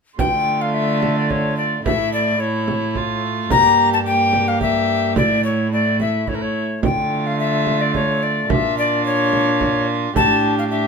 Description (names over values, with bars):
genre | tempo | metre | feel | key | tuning
classical, renaissance-style consort dance | 108 BPM | 3/4 | straight | D harmonic minor | A4 = 439 Hz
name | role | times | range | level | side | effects
alto recorder | melody | 0.2-10.9 s | Bb4 to Bb5 | -19 LUFS | left 4 dB | none
dark violin | second line | 0.2-10.9 s | E4 to G4 | -25 LUFS | right 8 dB | none
warm viola | accompaniment | 0.2-10.9 s | A3 to D4 | -24 LUFS | left 2 dB | none
rich cello | bass | 0.2-10.9 s | G2 to D3 | -24 LUFS | right 2 dB | none
frame drum | percussion | 0.2-10.4 s | none | -23 LUFS | right 4 dB | none
room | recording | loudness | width
moderate stone room reverb, RT60 1.0 s | minimal, uncompressed stereo recording | -16 LUFS | side -5 dB against mid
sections
0.2-10.9 A section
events
none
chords
0.2 Dm; 1.9 A; 3.5 Gm; 5.2 A5; 6.8 Dm; 8.5 Bb; 10.2 A7sus4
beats
| 0.19 0.74 1.30 | 1.85 2.40 2.96 | 3.51 4.06 4.61 | 5.17 5.72 6.28 | 6.84 7.39 7.95 | 8.50 9.06 9.61 | 10.16 10.71